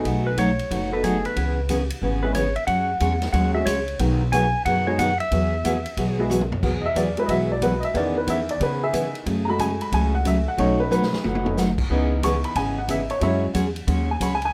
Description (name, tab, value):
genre	country, western swing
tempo	182 BPM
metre	4/4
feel	swing 65% on 8ths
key	E major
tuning	A4 = 438 Hz
part	bright upright piano	accompaniment	0.0-14.5 s	D#3 to C#6	-27 LUFS	equal	none
part	swinging big-band drum kit	drums	0.0-14.5 s	crash cymbal, hi-hat, kick drum, ride cymbal, snare drum, toms	-34 LUFS	equal	none
part	picked steel-string acoustic guitar	accompaniment	0.1-14.3 s	B2 to C#5	-27 LUFS	equal	none
part	upright bass	bass	0.1-14.5 s	F#1 to C#3	-28 LUFS	equal	none
part	clean lap steel guitar	second line	0.3-6.2 s	G#4 to G#5	-27 LUFS	equal	none
room	moderate club reverb, RT60 0.6 s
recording	none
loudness	-22 LUFS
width	mono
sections	0.0-6.6 A section; 6.6-14.5 A section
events	electric slide guitar solo 0.0-6.6; drum fill 6.3-6.6, 10.9-11.6; upright piano solo 6.6-14.5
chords	0.0 B7; 1.4 C#m7; 2.7 F#sus2; 4.0 B6; 5.3 Eadd9; 7.9 C#m7/E; 9.3 F#madd9; 10.6 B7; 11.9 C#m7; 13.2 F#sus2